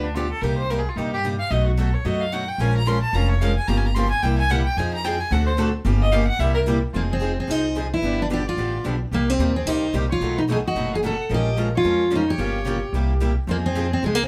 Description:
acoustic string swing (jazz manouche); 220 BPM; 4/4; swing 57% on 8ths; F minor; A4 = 442 Hz
clear violin; second line; 0.0-14.3 s; D4 to C6; -30 LUFS; equal
picked steel-string acoustic guitar; accompaniment; 0.0-14.2 s; B2 to Bb4; -30 LUFS; equal
upright bass; bass; 0.0-14.3 s; F1 to G2; -26 LUFS; equal
picked steel-string acoustic guitar; accompaniment; 2.6-14.2 s; B2 to Bb4; -33 LUFS; equal
picked steel-string acoustic guitar; melody; 7.0-14.3 s; Ab3 to A4; -25 LUFS; equal
moderate studio reverb, RT60 0.5 s; band playing live in one room; -22 LUFS; mono
0.0-6.9 A section; 6.9-14.3 B section
violin solo 0.0-6.9
0.4 Cm7; 1.5 B7; 2.6 Bbm7; 3.7 Gm7b5; 4.2 C7; 4.8 Fm7; 5.3 D7; 5.9 Gm7b5; 6.4 C7; 6.9 Fm7; 8.0 G7; 9.1 Cm7; 10.2 B7; 11.3 Bbm7; 12.4 Gm7b5; 12.9 C7; 13.5 Fm7
0.15 | 0.42 0.70 0.97 1.24 | 1.51 1.78 2.05 2.33 | 2.60 2.87 3.14 3.41 | 3.68 3.95 4.22 4.50 | 4.77 5.04 5.31 5.58 | 5.85 6.12 6.40 6.67 | 6.94 7.21 7.48 7.76 | 8.03 8.30 8.57 8.85 | 9.12 9.39 9.66 9.94 | 10.21 10.48 10.75 11.03 | 11.30 11.57 11.84 12.11 | 12.39 12.66 12.93 13.20 | 13.48 13.75 14.02

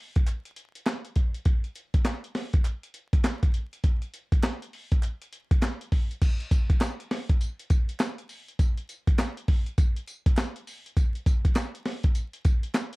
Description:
R&B; 101 BPM; 4/4; swing 63% on 16ths
breakbeat sampler-style drum kit; drums; 0.2-13.0 s; crash cymbal, handclaps, hi-hat, kick drum, snare drum, tambourine; -23 LUFS; equal
group handclap; percussion; 0.3-12.9 s; -44 LUFS; right 5 dB
little or no reverb; dark, warm production, vinyl crackle; -24 LUFS; side -24 dB against mid
0.0-6.2 A section; 6.2-13.0 B section
0.27 0.87 | 1.46 2.06 2.65 3.24 | 3.84 4.43 5.03 5.62 | 6.21 6.81 7.40 8.00 | 8.59 9.19 9.78 10.37 | 10.97 11.56 12.15 12.75

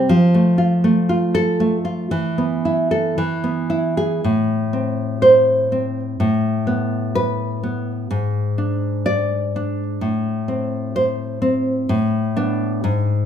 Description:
romantic piece for solo classical guitar; 57-65 BPM; 2/4; rubato; A minor; A4 = 439 Hz
nylon-string guitar; solo; 0.0-13.3 s; G#2 to D5; -17 LUFS; equal
moderate recital hall reverb, RT60 1.3 s; minimal, uncompressed stereo recording; -17 LUFS; side -9 dB against mid
0.0-4.2 A section; 4.2-13.3 B section
0.1 F; 2.1 Esus4; 3.2 E; 4.2 Am; 6.2 Asus2; 8.1 N.C.; 10.0 Am; 11.9 Asus24
| 0.12 1.12 | 2.15 3.20 | 4.24 5.22 | 6.18 7.15 | 8.10 9.07 | 10.02 10.95 | 11.90 12.86

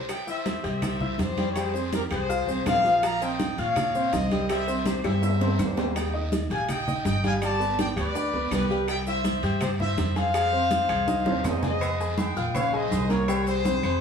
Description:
latin, salsa; 164 BPM; 4/4; straight; F minor; A4 = 440 Hz
clear trumpet section; melody; 0.0-14.0 s; G4 to Bb5; -27 LUFS; left 2 dB; plate reverb
bongos and cowbell; percussion; 0.1-13.8 s; -36 LUFS; left 3 dB
claves; percussion; 0.1-14.0 s; -45 LUFS; right 1 dB
congas; percussion; 0.1-14.0 s; -31 LUFS; right 1 dB
guiro; percussion; 0.1-14.0 s; -44 LUFS; right 3 dB
maracas; percussion; 0.1-14.0 s; -47 LUFS; left 4 dB
timbales and agogo bells; percussion; 0.1-14.0 s; -35 LUFS; right 4 dB
clear baby grand piano; accompaniment; 0.3-14.0 s; F3 to Ab6; -30 LUFS; left 1 dB
upright bass; bass; 0.6-14.0 s; G1 to Bb2; -29 LUFS; equal
wet studio reverb, RT60 0.8 s; heard from further back in the room, small room ambience; -23 LUFS; side -6 dB against mid
0.1-11.8 A section; 11.8-14.0 B section
drum fill 4.9-6.0, 11.1-11.8
0.1 C; 1.6 Fmadd9; 4.5 C; 6.0 Eb; 7.4 G; 8.9 C; 10.3 Fm7; 11.8 Fm9; 12.6 Bbm7; 13.3 C5
| 0.09 0.46 0.83 1.19 | 1.56 1.93 2.30 2.66 | 3.03 3.40 3.76 4.13 | 4.50 4.86 5.23 5.59 | 5.96 6.32 6.69 7.06 | 7.42 7.79 8.15 8.52 | 8.88 9.25 9.62 9.98 | 10.35 10.72 11.08 11.45 | 11.82 12.18 12.55 12.92 | 13.29 13.65

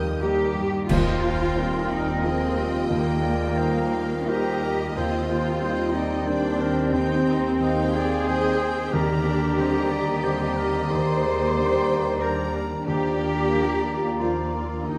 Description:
cinematic, emotional film score for orchestra; 90 BPM; 3/4; rubato; Eb major; A4 = 440 Hz
rich studio violin section; melody; 0.0-15.0 s; F5 to Eb6; -44 LUFS; equal
mellow hollow baroque flute; second line; 0.0-15.0 s; Eb5 to Bb5; -35 LUFS; equal
rich studio violin section; second line; 0.0-15.0 s; G4 to F5; -41 LUFS; equal
warm clarinet; second line; 0.0-15.0 s; G4 to Eb5; -35 LUFS; equal
warm oboe; second line; 0.0-15.0 s; Bb4 to G5; -38 LUFS; equal
warm grand piano; accompaniment; 0.0-15.0 s; Eb2 to Eb4; -32 LUFS; equal
warm studio viola section; accompaniment; 0.0-15.0 s; G3 to G4; -37 LUFS; equal
mellow French horn section; sustained chords; 0.0-15.0 s; Bb3 to G4; -33 LUFS; equal
concert harp; arpeggios; 0.0-15.0 s; D3 to D6; -38 LUFS; equal
warm studio cello section; bass; 0.0-15.0 s; Eb2 to C5; -29 LUFS; equal
warm studio double bass section; bass; 0.0-15.0 s; Eb2; -32 LUFS; equal
clash cymbals and concert bass drum; percussion; 0.9-2.2 s; -33 LUFS; equal
timpani; percussion; 0.9-1.9, 8.9-9.9 s; Eb3; -33 LUFS; equal
moderate scoring stage reverb, RT60 2.1 s; -24 LUFS; mono
0.9-15.0 A section
band accent 0.9-1.6
0.0 Eb; 0.9 Ebadd9; 8.9 Gm/Eb; 12.9 Bb/Eb
0.22 | 0.90 1.58 2.24 | 2.91 3.58 4.29 | 4.96 5.62 6.26 | 6.92 7.59 8.28 | 8.93 9.57 10.22 | 10.90 11.57 12.22 | 12.87 13.53 14.19 | 14.88

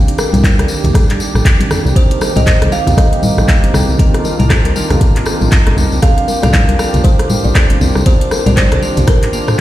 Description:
afro house; 118 BPM; 4/4; swing 59% on 16ths; C minor; A4 = 440 Hz
warm analog pad; sustained chords; 0.0-9.6 s; Eb3 to G4; -22 LUFS; right 3 dB; chorus, sidechain pumping
kalimba; arpeggios; 0.0-9.5 s; Bb3 to C5; -22 LUFS; equal; sidechain pumping, ping-pong delay
afro-pop drum kit; drums; 0.1-9.6 s; handclaps, hi-hat, rim click, toms; -18 LUFS; equal; studio reverb
congas; percussion; 0.2-9.6 s; -19 LUFS; left 2 dB
tambourine; percussion; 0.2-9.6 s; -26 LUFS; left 3 dB
round analog bass; bass; 0.3-9.0 s; G1 to C2; -14 LUFS; equal; sidechain pumping
electronic kick drum; drums; 0.4-9.2 s; -12 LUFS; equal; studio reverb
buzzing kalimba; melody; 2.0-9.6 s; Bb4 to F5; -21 LUFS; right 2 dB; ping-pong delay
percussive tonewheel organ; stabs; 2.0-9.6 s; C4 to Bb4; -24 LUFS; left 2 dB; overdrive, stopped rotary speaker, sidechain pumping
small room ambience; played on a big sound system in a bare room, stone room reverb; -9 LUFS; side -14 dB against mid
0.0-9.6 A section
0.0 Ebmaj7/C; 2.0 Cm7; 6.0 Gm7/C; 8.1 Ebmaj7/C
0.43 0.94 1.45 | 1.96 2.47 2.98 3.49 | 4.00 4.50 5.01 5.52 | 6.03 6.54 7.04 7.55 | 8.06 8.57 9.08 9.59

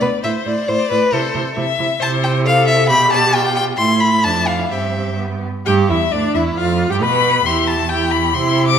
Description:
quick classical-period movement for string quartet; 134 BPM; 2/4; rubato; A4 = 441 Hz
rich violin; melody; 0.0-8.8 s; E4 to D6; -20 LUFS; left 7 dB
warm violin; second line; 0.0-8.8 s; D4 to C6; -18 LUFS; left 2 dB
warm viola; accompaniment; 0.0-8.8 s; B3 to B4; -22 LUFS; right 4 dB
clear cello; bass; 0.0-8.8 s; D2 to C3; -19 LUFS; right 4 dB
wet recital hall reverb, RT60 1.4 s; -14 LUFS; side -8 dB against mid
0.0-5.7 A section; 5.7-8.8 B section
0.2 Am; 1.1 Am/C; 2.9 G/B; 3.8 Am; 4.2 Dm/F; 4.7 C/G; 5.2 G; 5.7 Dsus24; 6.6 G7/F; 7.5 Emadd11
| 0.24 0.69 | 1.14 1.57 | 2.02 2.46 | 2.90 3.34 | 3.79 4.25 | 4.72 5.20 | 5.67 6.13 | 6.57 7.02 | 7.46 7.91 | 8.35

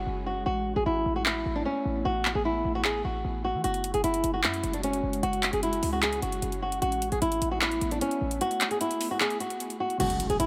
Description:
hip hop, trap; 151 BPM; 4/4; half-time; A4 = 441 Hz
flamenco guitar; melody; 0.0-10.5 s; C#4 to G#4; -30 LUFS; equal; low-pass filter, tape echo
ethereal airy pad; sustained chords; 0.0-10.0 s; G#3 to F#4; -40 LUFS; equal; ensemble chorus, built-in reverb
short 808-style bass; bass; 0.0-10.5 s; F#1 to E3; -36 LUFS; equal
trap drum kit; drums; 1.3-10.5 s; crash cymbal, handclaps, hi-hat; -33 LUFS; equal; overdrive
soft electric-piano-like synth keys; accompaniment; 10.0-10.5 s; C#3 to G#4; -35 LUFS; equal; chorus, low-pass filter
impact; sound effects; 10.0-10.5 s; -38 LUFS; equal
light reverb, digital ambience; -28 LUFS; mono
0.0-10.0 A section
break 0.0-3.6; kick muted 8.4-10.0; impact 10.0-10.5
0.5 Asus2; 3.6 F#sus2; 6.8 Asus2
0.07 | 0.46 0.86 1.26 1.66 | 2.05 2.45 2.85 3.24 | 3.64 4.04 4.44 4.83 | 5.23 5.63 6.03 6.42 | 6.82 7.22 7.62 8.01 | 8.41 8.81 9.21 9.60 | 10.00 10.40

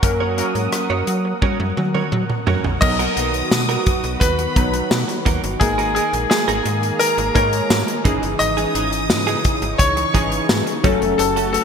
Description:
1980s-style pop; 86 BPM; 4/4; straight; B major; A4 = 441 Hz
bright grand piano; melody; 0.0-11.6 s; G#4 to D#5; -22 LUFS; left 2 dB
glassy digital keys; accompaniment; 0.0-11.6 s; E3 to C#5; -24 LUFS; left 2 dB; chorus
lush unison pad; sustained chords; 0.0-11.6 s; C#3 to D#6; -27 LUFS; right 1 dB; chorus
direct-recorded clean electric guitar; riff; 0.0-11.6 s; E3 to C#5; -26 LUFS; right 8 dB; lush chorus, digital delay
slap-like FM bass; bass; 0.0-11.6 s; E#1 to F#3; -24 LUFS; equal
modern studio drum kit; drums; 0.0-11.6 s; crash cymbal, hi-hat, kick drum, rim click, snare drum, tambourine, toms; -20 LUFS; equal; gated reverb
rich studio violin section; second line; 2.8-11.6 s; G#5 to D#6; -28 LUFS; right 1 dB; digital delay
moderate plate reverb, RT60 2.4 s; bright 1980s-style digital production; -16 LUFS; side -6 dB against mid
0.0-2.8 A section; 2.8-11.6 B section
drum fill 1.4-2.8
0.0 F#; 2.8 Bmaj7; 5.6 G#sus2; 8.1 C#madd9; 10.8 F#m
| 0.03 0.73 1.42 2.12 | 2.82 3.52 4.21 4.91 | 5.61 6.31 7.00 7.70 | 8.40 9.10 9.80 10.49 | 11.19

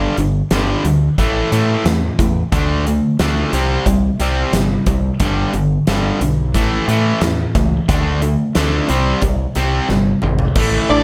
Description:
classic rock; 90 BPM; 4/4; straight; A4 = 441 Hz
distorted electric guitar; riff; 0.0-11.0 s; G2 to D4; -23 LUFS; equal; overdrive
distorted electric guitar; riff; 0.0-11.0 s; G2 to D4; -22 LUFS; equal; distortion
growling fingered electric bass; bass; 0.0-11.0 s; G1 to A2; -22 LUFS; equal; overdrive
huge arena drum kit; drums; 0.2-10.7 s; crash cymbal, hi-hat, kick drum, snare drum, toms; -23 LUFS; equal
overdriven tonewheel organ; melody; 10.9-11.0 s; D4; -16 LUFS; equal; chorus vibrato, slow rotary speaker
octave-fuzz lead guitar; second line; 10.9-11.0 s; D5; -18 LUFS; equal; distortion
light reverb; -16 LUFS; mono
0.0-10.6 A section
drum fill 9.9-10.6
0.0 G5; 1.2 A5; 2.5 D5; 3.5 C5; 5.2 G; 6.5 A; 7.9 D5; 8.9 C5
0.51 1.18 1.85 | 2.52 3.19 3.87 4.54 | 5.21 5.88 6.55 7.22 | 7.89 8.56 9.22 9.89 | 10.56

